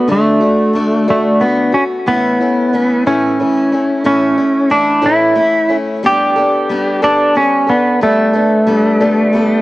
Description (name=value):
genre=rock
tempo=60 BPM (dotted quarters)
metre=6/8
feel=straight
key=A mixolydian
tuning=A4 = 438 Hz
part: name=clean lap steel guitar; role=melody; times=0.0-9.6 s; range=A3 to G4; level=-12 LUFS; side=equal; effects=cassette tape, analog delay
part: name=picked steel-string acoustic guitar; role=accompaniment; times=0.0-9.6 s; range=A2 to A4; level=-16 LUFS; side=left 1 dB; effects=cassette tape
room=light reverb, studio reverb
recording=home recording on cassette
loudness=-10 LUFS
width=side -18 dB against mid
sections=0.0-9.6 A section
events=none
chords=0.0 D; 2.1 A; 6.0 Gadd9